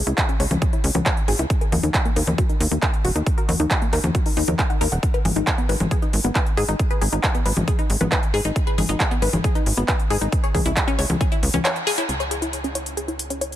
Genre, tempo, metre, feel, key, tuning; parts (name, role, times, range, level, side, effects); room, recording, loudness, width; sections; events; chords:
uplifting trance; 136 BPM; 4/4; straight; C# dorian; A4 = 440 Hz
tight sequencer bass; bass; 0.0-13.6 s; D#1 to G#2; -24 LUFS; equal; tube saturation, sidechain pumping
wide unison pluck; arpeggios; 0.1-13.5 s; A#3 to F#5; -26 LUFS; left 2 dB; sidechain pumping, digital delay
big-room dance drum kit; drums; 0.1-13.6 s; congas, handclaps, hi-hat; -24 LUFS; equal; overdrive
electronic kick drum; drums; 0.2-11.3 s; -21 LUFS; equal; overdrive
light reverb; -18 LUFS; side -12 dB against mid
0.0-12.1 A section; 12.1-13.6 B section
filter sweep on synth arpeggio sound 0.0-12.1, 12.1-13.6; band accent 11.6
0.0 C#m; 1.5 D#5; 5.0 G#m; 10.3 C#m